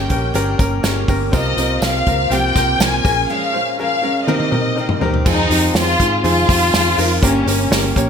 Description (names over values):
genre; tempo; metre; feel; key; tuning
piano-driven pop; 122 BPM; 4/4; straight; F minor; A4 = 436 Hz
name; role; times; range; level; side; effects
warm symphonic violin section; melody; 0.0-7.9 s; Db4 to Ab5; -18 LUFS; left 2 dB; none
clear concert grand piano; accompaniment; 0.0-8.1 s; G2 to Db5; -21 LUFS; left 4 dB; none
picked steel-string acoustic guitar; riff; 0.0-8.1 s; F2 to Ab4; -24 LUFS; right 9 dB; lush chorus
vintage muted fingered electric bass; bass; 0.0-8.1 s; G1 to Ab2; -21 LUFS; equal; none
unplugged drum kit; drums; 0.1-8.1 s; crash cymbal, hi-hat, kick drum, snare drum, toms; -18 LUFS; right 1 dB; gated reverb
tambourine; percussion; 0.3-7.8 s; none; -33 LUFS; right 8 dB; none
room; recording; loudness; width
light reverb, small room ambience; bright 1980s-style digital production; -14 LUFS; side -7 dB against mid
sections
0.0-5.3 A section; 5.3-8.1 A section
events
break 3.3-5.3; drum fill 4.3-5.3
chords
0.0 Gdim; 1.3 C7sus4; 3.0 Bbm7; 4.3 Cm7; 5.3 Fm7; 7.2 Gdim